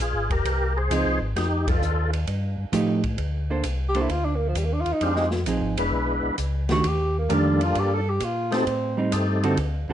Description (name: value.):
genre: soul jazz organ trio.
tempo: 132 BPM.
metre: 4/4.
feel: swing 68% on 8ths.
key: Bb major.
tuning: A4 = 439 Hz.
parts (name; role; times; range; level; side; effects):
percussive tonewheel organ; melody; 0.0-2.1, 5.0-9.6 s; G3 to C5; -26 LUFS; left 2 dB; slow rotary speaker, chorus vibrato.
mellow tonewheel organ; bass; 0.0-9.9 s; F1 to Bb2; -26 LUFS; equal; slow rotary speaker.
open jazz drum kit; drums; 0.0-9.7 s; hi-hat, kick drum, ride cymbal, snare drum; -32 LUFS; equal; none.
hollow-body jazz guitar; accompaniment; 0.9-9.9 s; D3 to C5; -25 LUFS; right 3 dB; none.
breathy tenor saxophone; melody; 3.9-9.1 s; F3 to A4; -26 LUFS; right 1 dB; none.
room: moderate studio reverb, RT60 0.8 s.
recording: dark, warm production, nothing above 10.9 kHz.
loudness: -21 LUFS.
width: side -10 dB against mid.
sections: 0.0-3.2 A section; 3.2-9.9 B section.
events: band accent 1.6; tenor saxophone solo 3.2-9.9.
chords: 0.0 Dbmaj9; 1.4 F9; 3.2 Bbmaj9; 5.0 Fm7; 5.9 E7; 6.8 Ebmaj9#11; 8.7 Am7b5.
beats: 0.00 0.45 0.91 | 1.37 1.82 2.28 2.74 | 3.19 3.65 4.11 4.56 | 5.02 5.47 5.93 6.39 | 6.84 7.30 7.76 8.21 | 8.67 9.12 9.58.